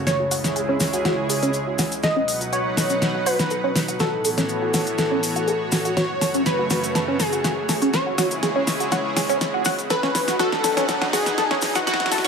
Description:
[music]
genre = progressive house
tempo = 122 BPM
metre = 4/4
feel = straight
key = unclear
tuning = A4 = 440 Hz
[part]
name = supersaw pad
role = sustained chords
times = 0.0-12.3 s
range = C#2 to F#5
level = -27 LUFS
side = right 1 dB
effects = none
[part]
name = tight sequenced synth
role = arpeggios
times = 0.0-12.3 s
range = C#4 to A4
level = -25 LUFS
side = right 1 dB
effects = chorus, phaser, vintage 12-bit sampler grit, dub echo
[part]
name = plucky unison lead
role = melody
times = 0.1-12.3 s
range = F#4 to D#5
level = -25 LUFS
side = equal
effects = dub echo
[part]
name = pop drum kit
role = drums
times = 0.1-12.3 s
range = hi-hat, snare drum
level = -25 LUFS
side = equal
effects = small room ambience
[part]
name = cabasa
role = percussion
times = 0.1-12.3 s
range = none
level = -30 LUFS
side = left 2 dB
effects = none
[part]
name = riser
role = sound effects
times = 8.0-12.3 s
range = none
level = -33 LUFS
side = right 1 dB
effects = none
[sound]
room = moderate digital room reverb, RT60 1.3 s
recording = high-pass filter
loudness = -19 LUFS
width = side -6 dB against mid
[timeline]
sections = 0.0-12.3 A section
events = build-up 0.0-12.3; drum fill 0.0-12.3; filter sweep on synth arpeggio sound 0.0-12.3; filter sweep on digital synth lead 0.0-12.3; riser 8.0-12.3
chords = 0.1 C#m; 2.0 B; 4.0 A6; 6.0 F#m; 7.9 C#m; 9.9 B

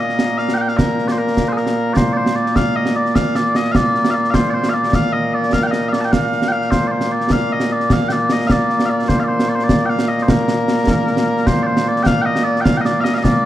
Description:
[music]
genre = scottish traditional, Scottish pipe music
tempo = 101 BPM (dotted quarters)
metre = 6/8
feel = straight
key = Bb major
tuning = A4 = 440 Hz
[part]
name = mellow small bagpipes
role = melody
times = 0.0-13.5 s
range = Bb2 to A5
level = -16 LUFS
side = equal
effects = none
[part]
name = concert snare drum and concert bass drum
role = drums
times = 0.1-13.3 s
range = none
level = -18 LUFS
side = right 1 dB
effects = none
[sound]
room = light reverb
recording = dark, warm production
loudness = -14 LUFS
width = side -13 dB against mid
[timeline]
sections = 0.0-2.0 A section; 2.0-11.5 B section; 11.5-13.5 B section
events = none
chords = none

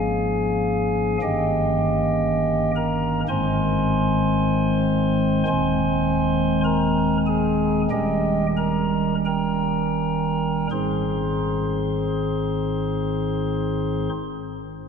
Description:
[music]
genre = classical, chorale-style piece for pipe organ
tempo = 40-61 BPM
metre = 4/4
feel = rubato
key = Ab major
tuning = A4 = 445 Hz
[part]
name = pipe organ, stopped flute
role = solo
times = 0.0-14.1 s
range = Eb1 to C6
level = -20 LUFS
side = equal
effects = none
[sound]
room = wet cathedral reverb, RT60 4.5 s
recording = minimal, uncompressed stereo recording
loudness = -20 LUFS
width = side -6 dB against mid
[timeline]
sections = 0.0-10.7 A section; 10.7-14.9 B section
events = slowing down 0.0-10.7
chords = 0.0 Bbm7/Ab; 1.2 Eb7/G; 3.3 Ab; 5.5 Ab/Eb; 7.9 Eb7; 10.7 Ab

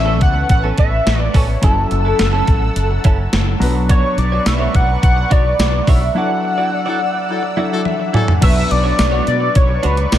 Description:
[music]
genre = 1980s-style pop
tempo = 106 BPM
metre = 4/4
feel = straight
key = B minor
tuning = A4 = 439 Hz
[part]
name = octave-doubled lead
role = melody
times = 0.0-10.2 s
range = A4 to F#5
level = -19 LUFS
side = left 1 dB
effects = chorus, phaser, shimmer reverb
[part]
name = warm baby grand piano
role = accompaniment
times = 0.0-10.2 s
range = E3 to G#5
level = -23 LUFS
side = left 2 dB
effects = shimmer reverb
[part]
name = lush unison pad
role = sustained chords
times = 0.0-10.2 s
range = A4 to E6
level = -27 LUFS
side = equal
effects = chorus, phaser, shimmer reverb
[part]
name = mellow fretless electric bass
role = bass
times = 0.0-10.2 s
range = F#1 to B2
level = -17 LUFS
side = equal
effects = lush chorus
[part]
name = direct-recorded clean electric guitar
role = riff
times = 0.1-10.2 s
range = B3 to D5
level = -27 LUFS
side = right 6 dB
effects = lush chorus, shimmer reverb
[part]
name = clean 12-bit digital drum machine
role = drums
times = 0.2-10.2 s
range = crash cymbal, hi-hat, kick drum, snare drum, tambourine, toms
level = -16 LUFS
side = equal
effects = gated reverb
[part]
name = warm horn section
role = stabs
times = 6.9-8.3 s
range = F#3 to A4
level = -27 LUFS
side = left 4 dB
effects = shimmer reverb
[sound]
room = light reverb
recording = none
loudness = -13 LUFS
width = side -12 dB against mid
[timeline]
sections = 0.0-8.4 A section; 8.4-10.2 B section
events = break 6.2-8.4; band accent 6.2-8.4; grand piano fill 7.6-8.4; drum fill 7.9-8.4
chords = 0.0 Aadd9; 1.6 F#m7; 3.6 Bmadd9; 6.2 Dadd9; 8.4 Bmadd9

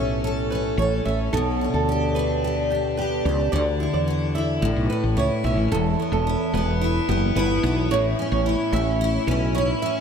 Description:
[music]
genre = acoustic pop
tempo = 110 BPM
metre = 4/4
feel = straight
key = unclear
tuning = A4 = 440 Hz
[part]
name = picked steel-string acoustic guitar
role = accompaniment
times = 0.0-10.0 s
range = E2 to A4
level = -24 LUFS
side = left 2 dB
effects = double-tracked left and right
[part]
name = flamenco guitar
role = arpeggios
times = 0.0-9.9 s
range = G4 to E5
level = -27 LUFS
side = right 4 dB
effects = ping-pong delay
[part]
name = woody fretless electric bass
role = bass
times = 0.0-9.7 s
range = E1 to E2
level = -24 LUFS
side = equal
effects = analog chorus
[sound]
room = moderate huge ambient reverb, RT60 7.5 s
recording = dreamy mix soaked in reverb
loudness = -20 LUFS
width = side -7 dB against mid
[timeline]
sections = 0.0-5.7 A section; 5.7-10.0 B section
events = none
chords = 0.0 A; 1.3 Gadd9/B; 3.5 Dadd9; 4.6 Aadd9; 5.7 Em; 7.9 A

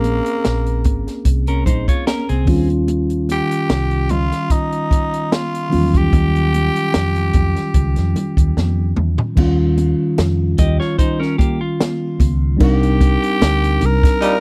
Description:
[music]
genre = lush 1970s-style soul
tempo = 74 BPM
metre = 4/4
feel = swing 54% on 16ths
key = unclear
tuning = A4 = 439 Hz
[part]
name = growling tenor saxophone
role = melody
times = 0.0-14.4 s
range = Bb3 to Bb4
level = -24 LUFS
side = equal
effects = none
[part]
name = mellow tine electric piano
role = accompaniment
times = 0.0-14.4 s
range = Eb3 to Bb4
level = -22 LUFS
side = equal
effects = none
[part]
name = vintage muted fingered electric bass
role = bass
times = 0.0-14.0 s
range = Ab1 to F2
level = -20 LUFS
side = equal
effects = none
[part]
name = compact cocktail drum kit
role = drums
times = 0.0-14.4 s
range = crash cymbal, hi-hat, kick drum, snare drum, toms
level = -19 LUFS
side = equal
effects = none
[part]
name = congas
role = percussion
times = 0.1-14.0 s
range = none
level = -29 LUFS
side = equal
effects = none
[part]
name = clean electric guitar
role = riff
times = 1.5-2.7, 10.6-12.6 s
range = Bb3 to Eb5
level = -26 LUFS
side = equal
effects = none
[part]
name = warm horn section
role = stabs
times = 14.2-14.4 s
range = Bb2 to Eb4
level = -18 LUFS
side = equal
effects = none
[sound]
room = small room ambience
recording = dry, close 1970s-style studio recording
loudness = -17 LUFS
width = mono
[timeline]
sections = 0.0-9.4 A section; 9.4-12.6 B section; 12.6-14.4 C section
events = drum fill 8.6-9.4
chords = 0.0 Bbm9; 2.5 Eb9; 12.6 Cm9

